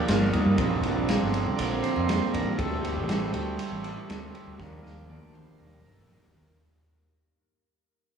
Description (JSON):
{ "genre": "psychedelic rock", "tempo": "120 BPM", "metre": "4/4", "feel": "straight", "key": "unclear", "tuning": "A4 = 441 Hz", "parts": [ { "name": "bright tonewheel organ", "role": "sustained chords", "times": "0.0-6.3 s", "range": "D3 to Eb5", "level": "-32 LUFS", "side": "right 6 dB", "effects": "wide subtle chorus" }, { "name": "electric guitar through a small old amp", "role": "riff", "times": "0.0-6.6 s", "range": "G2 to Bb4", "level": "-30 LUFS", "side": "equal", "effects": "phaser, analog delay" }, { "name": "fuzz fingered electric bass", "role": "bass", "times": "0.1-6.5 s", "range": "G1 to Eb3", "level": "-31 LUFS", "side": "right 1 dB", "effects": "overdrive" }, { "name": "raw garage drum kit", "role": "drums", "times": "0.1-6.6 s", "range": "kick drum, ride cymbal, snare drum, toms", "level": "-30 LUFS", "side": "equal", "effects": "analog delay" }, { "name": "congas", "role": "percussion", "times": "0.3-2.5 s", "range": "none", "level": "-36 LUFS", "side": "left 1 dB", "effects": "none" } ], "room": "light reverb, small room ambience", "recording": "echo-heavy mix", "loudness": "-24 LUFS", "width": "side -7 dB against mid", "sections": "0.0-6.6 A section", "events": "fade-out 0.0-6.6; tonewheel organ solo 0.0-6.6; drum fill 4.6-6.6", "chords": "0.0 Gm7; 0.6 Bbadd9; 2.6 D7sus4; 4.6 Ebmaj7", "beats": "0.08 | 0.58 1.08 1.58 2.08 | 2.58 3.08 3.58 4.08 | 4.59 5.09 5.59 6.09" }